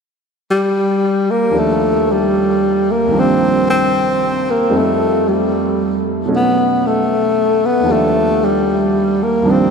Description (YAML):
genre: jazz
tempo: 76 BPM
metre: 4/4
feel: swing 67% on 8ths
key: unclear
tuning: A4 = 440 Hz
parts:
  - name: mellow tenor saxophone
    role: melody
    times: 0.5-9.7 s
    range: G3 to C4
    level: -14 LUFS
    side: left 1 dB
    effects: analog delay
  - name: warm grand piano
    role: accompaniment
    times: 1.5-9.7 s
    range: C2 to Eb4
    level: -18 LUFS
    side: right 3 dB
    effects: none
room: wet cathedral reverb, RT60 5.0 s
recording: dreamy mix soaked in reverb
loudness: -13 LUFS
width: side -5 dB against mid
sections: 0.0-1.5 A section; 1.5-9.7 B section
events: none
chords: 0.0 N.C.; 1.5 Ebmaj7; 3.1 Cm11; 4.7 F9; 6.3 B7; 7.9 Ebmaj7